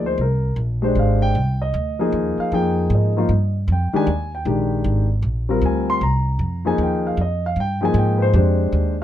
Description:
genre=jazz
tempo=154 BPM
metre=3/4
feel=swing 65% on 8ths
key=F dorian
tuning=A4 = 440 Hz
part: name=dark concert grand piano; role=accompaniment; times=0.0-9.0 s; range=Eb3 to C6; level=-20 LUFS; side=left 2 dB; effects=none
part: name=upright bass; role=bass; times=0.0-9.0 s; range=Ab1 to Ab2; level=-20 LUFS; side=right 1 dB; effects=none
room=light reverb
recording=close, detailed microphones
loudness=-17 LUFS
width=side -11 dB against mid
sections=0.0-9.0 A section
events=none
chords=0.0 Fm11

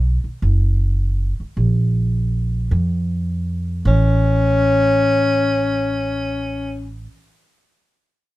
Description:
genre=jazz, small-group swing and bop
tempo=105 BPM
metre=4/4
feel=swing 68% on 8ths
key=A major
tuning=A4 = 440 Hz
part: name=upright bass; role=bass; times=0.0-7.0 s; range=F#1 to F2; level=-18 LUFS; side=right 1 dB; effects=none
part: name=warm tenor saxophone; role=melody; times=3.9-6.9 s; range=C#4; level=-17 LUFS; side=left 2 dB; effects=none
room=little or no reverb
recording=minimal, uncompressed stereo recording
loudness=-16 LUFS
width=side -17 dB against mid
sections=0.0-3.9 A section; 3.9-6.1 B section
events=none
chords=0.0 B5; 1.6 Bb5; 3.9 A

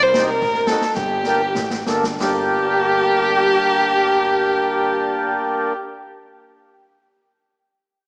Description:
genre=klezmer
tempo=87-115 BPM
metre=2/4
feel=straight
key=G minor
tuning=A4 = 439 Hz
part: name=dark violin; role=melody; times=0.0-5.7 s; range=G4 to C5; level=-22 LUFS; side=equal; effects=none
part: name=dark violin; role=second line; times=0.0-5.7 s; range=G4 to C5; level=-25 LUFS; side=equal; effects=none
part: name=fat analog bass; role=bass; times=0.0-5.7 s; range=G1 to C2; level=-34 LUFS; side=equal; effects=none
part: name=street-band drum kit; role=drums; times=0.1-2.4 s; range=hi-hat, kick drum, snare drum, toms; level=-29 LUFS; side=equal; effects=none
part: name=mellow accordion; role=accompaniment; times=0.2-5.7 s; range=Bb3 to A4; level=-23 LUFS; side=equal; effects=none
room=moderate scoring stage reverb, RT60 2.0 s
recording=small speaker sound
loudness=-19 LUFS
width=mono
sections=0.0-2.2 A section; 2.2-5.0 B section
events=slowing down 0.0-2.2; drum fill 1.0-2.2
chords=0.0 Cm; 1.0 Gm

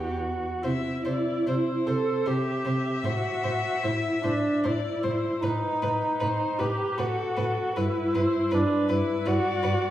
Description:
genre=classical, slow romantic movement for string quartet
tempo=76 BPM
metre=3/4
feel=uneven beats, rubato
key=unclear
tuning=A4 = 440 Hz
part: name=muted violin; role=second line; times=0.0-9.7 s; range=G4 to C5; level=-36 LUFS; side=left 2 dB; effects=none
part: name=muted viola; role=accompaniment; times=0.0-9.9 s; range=D4 to A4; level=-26 LUFS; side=right 1 dB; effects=none
part: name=muted cello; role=bass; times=0.0-9.7 s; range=E2 to C3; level=-30 LUFS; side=right 1 dB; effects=none
part: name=muted violin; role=melody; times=0.6-9.9 s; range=A4 to E5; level=-33 LUFS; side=left 6 dB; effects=none
room=wet recital hall reverb, RT60 1.5 s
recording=heard from further back in the room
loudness=-24 LUFS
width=side -12 dB against mid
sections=0.6-9.9 A section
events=none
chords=0.0 Em; 0.6 C; 3.0 Am; 5.4 B7/A; 7.8 Em/G

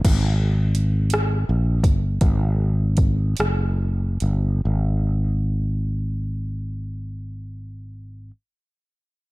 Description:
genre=slow six-eight R&B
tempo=46-57 BPM (dotted quarters)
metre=6/8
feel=straight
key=unclear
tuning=A4 = 438 Hz
part: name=smooth R&B drum kit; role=drums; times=0.0-4.4 s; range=crash cymbal, hi-hat, kick drum, rim click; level=-22 LUFS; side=equal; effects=none
part: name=sustaining fretless electric bass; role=bass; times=0.1-8.3 s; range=Gb1 to Bb1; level=-21 LUFS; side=equal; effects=none
room=little or no reverb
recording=none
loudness=-19 LUFS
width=side -21 dB against mid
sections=0.0-4.6 A section; 4.6-9.3 B section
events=slowing down 0.0-4.6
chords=none

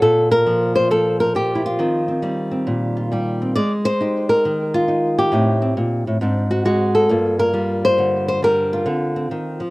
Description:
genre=solo jazz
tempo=136 BPM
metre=4/4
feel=swing 66% on 8ths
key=G minor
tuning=A4 = 439 Hz
part: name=nylon-string guitar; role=solo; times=0.0-9.7 s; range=G2 to D5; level=-16 LUFS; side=equal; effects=slapback echo
room=light reverb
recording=recorded outdoors, with no room sound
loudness=-16 LUFS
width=side -21 dB against mid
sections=0.0-9.7 A section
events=none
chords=0.0 Bb5; 1.8 Eb69; 3.5 Abmaj9; 5.3 Am7b5; 6.2 Ab7#11; 7.1 Gm7; 8.9 Dm7

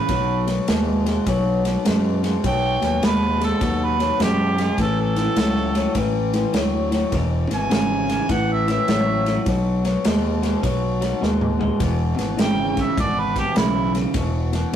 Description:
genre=electric blues shuffle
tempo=102 BPM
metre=4/4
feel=swing 65% on 8ths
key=E major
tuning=A4 = 440 Hz
part: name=mellow harmonica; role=melody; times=0.0-13.9 s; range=E4 to G#5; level=-24 LUFS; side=right 4 dB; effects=overdrive
part: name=electric guitar through a small old amp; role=riff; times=0.0-14.8 s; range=E2 to G#3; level=-22 LUFS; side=left 2 dB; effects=none
part: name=fingered electric bass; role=bass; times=0.1-14.8 s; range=E1 to F#2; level=-23 LUFS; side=equal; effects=none
part: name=natural country drum kit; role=drums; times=0.1-14.8 s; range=kick drum, ride cymbal, snare drum, toms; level=-25 LUFS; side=right 1 dB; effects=none
room=moderate stone room reverb, RT60 1.2 s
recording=rough rehearsal-room recording, warm saturation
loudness=-18 LUFS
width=side -10 dB against mid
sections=0.0-11.8 A section; 11.8-14.8 B section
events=drum fill 11.2-11.8; harmonica solo 11.8-14.8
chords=0.1 B; 4.8 A; 7.1 E; 8.3 A5; 9.5 B; 11.8 E

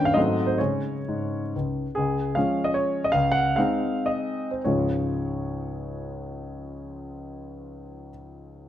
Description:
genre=classical, romantic triple-time dance for piano with dotted rhythms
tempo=98-162 BPM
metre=3/4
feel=rubato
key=Db major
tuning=A4 = 440 Hz
part: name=warm grand piano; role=solo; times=0.0-8.7 s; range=Db2 to G5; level=-24 LUFS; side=equal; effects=none
room=moderate recital hall reverb, RT60 1.5 s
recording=close, detailed microphones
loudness=-23 LUFS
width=side -11 dB against mid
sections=0.0-2.0 A section; 2.0-4.6 B section; 4.6-7.7 C section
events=slowing down 1.3-4.6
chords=0.2 Ab7b9; 0.6 Db5; 2.0 Db; 3.1 Ab/Db; 4.6 Db

